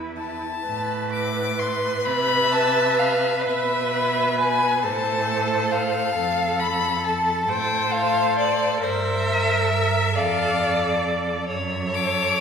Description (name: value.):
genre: classical, slow romantic movement for string quartet.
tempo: 44 BPM (dotted quarters).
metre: 6/8.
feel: uneven beats, rubato.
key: A minor.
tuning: A4 = 440 Hz.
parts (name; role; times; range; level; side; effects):
clear violin; second line; 0.0-12.4 s; A4 to E5; -25 LUFS; equal; none.
rich viola; accompaniment; 0.0-12.4 s; E4 to C5; -26 LUFS; right 2 dB; none.
clear cello; bass; 0.0-12.4 s; E2 to C3; -28 LUFS; right 4 dB; none.
clear violin; melody; 0.2-12.4 s; C5 to D6; -24 LUFS; left 5 dB; none.
room: wet concert hall reverb, RT60 2.2 s.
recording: recorded in a church or concert hall.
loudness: -20 LUFS.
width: side -6 dB against mid.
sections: 0.7-12.4 A section.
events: none.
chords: 0.0 E5; 0.7 Am; 3.4 E5/B; 4.8 Am; 6.1 F; 8.8 C7/G; 10.2 F; 11.5 F#m.